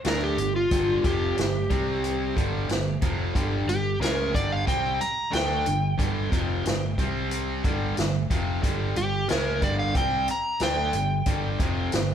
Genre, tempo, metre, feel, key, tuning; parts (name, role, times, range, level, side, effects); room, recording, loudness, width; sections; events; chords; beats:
blues rock power trio and southern rock; 91 BPM; 4/4; straight; G minor; A4 = 443 Hz
overdriven slide guitar; melody; 0.0-12.1 s; F4 to Bb5; -27 LUFS; right 1 dB
distorted electric guitar; riff; 0.0-12.1 s; F2 to D4; -28 LUFS; equal; overdrive
vintage drum kit; drums; 0.0-12.1 s; hi-hat, kick drum, snare drum; -28 LUFS; equal
vintage muted fingered electric bass; bass; 0.1-12.1 s; F1 to D2; -30 LUFS; equal
moderate large studio reverb, RT60 1.2 s; band playing live in one room; -23 LUFS; side -9 dB against mid
0.0-12.1 A section
0.0 G5; 1.7 C5; 2.4 G5; 7.0 C5; 7.6 G5
0.05 | 0.71 1.37 2.03 2.69 | 3.35 4.01 4.67 5.33 | 5.99 6.65 7.31 7.97 | 8.63 9.29 9.95 10.61 | 11.27 11.93